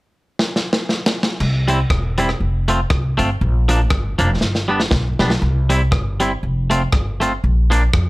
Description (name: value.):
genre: ska.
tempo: 119 BPM.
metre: 4/4.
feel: swing 56% on 8ths.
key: C major.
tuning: A4 = 441 Hz.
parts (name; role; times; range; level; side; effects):
crunchy breakbeat drum kit; drums; 0.4-8.1 s; crash cymbal, hi-hat, kick drum, rim click, snare drum; -20 LUFS; equal; none.
upright bass; bass; 1.4-8.1 s; E1 to F2; -18 LUFS; equal; none.
twangy electric guitar; accompaniment; 1.7-8.0 s; F3 to F4; -20 LUFS; right 1 dB; plate reverb.
room: light reverb.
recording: none.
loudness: -16 LUFS.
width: side -21 dB against mid.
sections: 0.0-1.4 A section; 1.4-5.4 B section; 5.4-8.1 C section.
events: drum fill 0.4-1.4, 4.4-5.4.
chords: 0.0 N.C.; 1.4 C; 2.4 F; 3.4 Bb; 4.4 G; 5.4 C; 6.4 F; 7.4 Bb.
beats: 0.39 0.90 | 1.40 1.90 2.40 2.90 | 3.40 3.91 4.41 4.91 | 5.42 5.92 6.42 6.93 | 7.43 7.93.